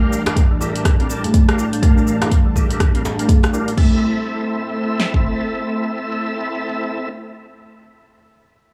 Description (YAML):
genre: afro house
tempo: 123 BPM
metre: 4/4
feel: swing 60% on 16ths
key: A phrygian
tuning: A4 = 440 Hz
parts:
  - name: warm analog pad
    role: sustained chords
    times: 0.0-7.1 s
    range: A2 to A5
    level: -28 LUFS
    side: equal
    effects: chorus, sidechain pumping
  - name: overdriven tonewheel organ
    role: stabs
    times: 0.0-7.1 s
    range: C4 to A5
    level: -28 LUFS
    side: equal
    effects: chorus vibrato, slow rotary speaker, sidechain pumping, low-pass filter, dub echo
  - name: folk marimba with medium hard mallets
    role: arpeggios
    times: 0.1-4.0 s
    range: E3 to A4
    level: -24 LUFS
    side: equal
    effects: sidechain pumping, low-pass filter, dub echo
  - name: deep house drum kit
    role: drums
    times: 0.1-3.9 s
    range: cabasa, crash cymbal, hi-hat, rim click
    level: -28 LUFS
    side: equal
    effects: none
  - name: djembe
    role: percussion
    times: 0.3-3.5 s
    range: none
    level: -30 LUFS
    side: equal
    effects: none
  - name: deep house drum kit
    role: drums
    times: 0.4-5.2 s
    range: kick drum, snare drum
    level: -17 LUFS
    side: equal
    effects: none
room: digital ambience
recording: small room ambience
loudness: -18 LUFS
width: mono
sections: 0.0-3.8 A section; 3.8-7.7 B section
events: filter sweep on marimba 0.0-3.8; filter sweep on tonewheel organ 0.0-3.8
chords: 0.0 Gm7/A; 3.8 Am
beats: 0.36 0.85 1.34 | 1.82 2.31 2.80 3.29 | 3.78 4.26 4.75 5.24 | 5.73 6.22 6.70